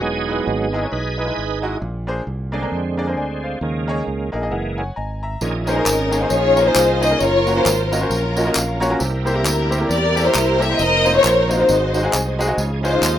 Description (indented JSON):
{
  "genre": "uptempo gospel",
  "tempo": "134 BPM",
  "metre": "4/4",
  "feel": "swing 59% on 8ths",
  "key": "Bb minor from 5.4 s",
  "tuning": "A4 = 440 Hz",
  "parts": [
    { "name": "bright concert grand piano", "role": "accompaniment", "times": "0.0-13.2 s", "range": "Ab2 to A#5", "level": "-23 LUFS", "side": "left 1 dB", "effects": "none" },
    { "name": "bright tonewheel organ", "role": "sustained chords", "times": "0.0-13.2 s", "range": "C3 to B4", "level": "-26 LUFS", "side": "right 4 dB", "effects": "slow rotary speaker, overdrive, chorus vibrato" },
    { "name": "fingered electric bass", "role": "bass", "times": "0.0-13.2 s", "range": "E1 to E#2", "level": "-23 LUFS", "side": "equal", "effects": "none" },
    { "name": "tambourine and handclaps", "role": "percussion", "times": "5.4-13.2 s", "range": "none", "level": "-24 LUFS", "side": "left 1 dB", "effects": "none" },
    { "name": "warm studio string section", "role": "melody", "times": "5.7-13.2 s", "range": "Db4 to E5", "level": "-17 LUFS", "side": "left 2 dB", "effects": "none" }
  ],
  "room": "light reverb",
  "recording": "rough home demo mix",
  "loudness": "-16 LUFS",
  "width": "side -11 dB against mid",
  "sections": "0.0-5.4 A section; 5.4-13.2 B section",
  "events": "tonewheel organ solo 0.0-5.4; grand piano fill 4.1-5.4, 8.3-9.0",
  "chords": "0.0 Emaj7; 1.8 A#9; 3.6 D#7sus4; 4.5 F#7; 5.4 Bbm11; 7.2 Gbmaj7; 9.0 C7; 10.8 F7sus4; 11.7 Ab7; 12.6 Dbmaj9"
}